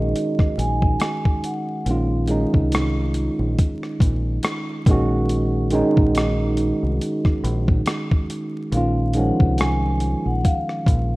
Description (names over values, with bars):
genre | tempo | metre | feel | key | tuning
lo-fi hip hop | 70 BPM | 4/4 | swing 57% on 16ths | unclear | A4 = 439 Hz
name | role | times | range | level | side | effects
vibraphone with soft mallets | melody | 0.0-1.9, 8.7-11.2 s | Eb5 to Ab5 | -28 LUFS | equal | none
mellow tine electric piano | accompaniment | 0.0-11.2 s | Eb3 to Gb4 | -22 LUFS | right 1 dB | overdrive, cassette tape
deep dub fingered electric bass | bass | 0.0-11.2 s | Bb1 to C2 | -22 LUFS | equal | none
boom bap sampler-style drum kit | drums | 0.2-11.1 s | hi-hat, kick drum, rim click | -20 LUFS | equal | none
room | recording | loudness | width
light reverb | rough home demo mix, vinyl crackle | -18 LUFS | side -20 dB against mid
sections
0.0-11.2 A section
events
none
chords
0.0 Ebm7/Bb; 1.9 Dbmaj13/Bb; 4.9 Ab9sus4/Bb; 8.7 Bbm9